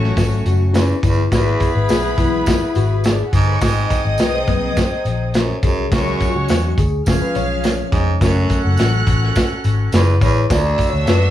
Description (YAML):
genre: uptempo 1960s-style soul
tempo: 104 BPM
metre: 4/4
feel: straight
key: F# minor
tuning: A4 = 440 Hz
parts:
  - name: mellow saxophone section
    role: second line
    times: 0.0-11.3 s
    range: G#3 to A4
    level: -25 LUFS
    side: equal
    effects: none
  - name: warm studio violin section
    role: second line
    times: 0.0-11.3 s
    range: D4 to F#6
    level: -28 LUFS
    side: right 1 dB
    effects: none
  - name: mellow tine electric piano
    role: accompaniment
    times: 0.0-11.3 s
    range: E3 to D5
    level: -22 LUFS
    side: left 3 dB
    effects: medium stereo tremolo
  - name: vintage muted picked electric bass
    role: bass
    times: 0.0-11.3 s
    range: E#1 to F#2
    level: -18 LUFS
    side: left 1 dB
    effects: none
  - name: crunchy breakbeat drum kit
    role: drums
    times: 0.0-11.2 s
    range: hi-hat, kick drum, snare drum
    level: -18 LUFS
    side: equal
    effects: none
  - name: tambourine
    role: percussion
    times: 0.2-11.2 s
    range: none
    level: -38 LUFS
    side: right 4 dB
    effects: none
  - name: growling baritone saxophone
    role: riff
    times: 0.7-10.9 s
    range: D2 to G#2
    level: -22 LUFS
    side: right 3 dB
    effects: none
room: small room ambience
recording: faint mains hum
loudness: -14 LUFS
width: side -12 dB against mid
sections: 0.0-11.3 A section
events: tine electric piano solo 0.0-11.3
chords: 0.0 F#m; 1.3 E/G#; 3.6 G#7; 5.9 C#sus4; 7.1 C#; 8.2 F#m; 10.5 D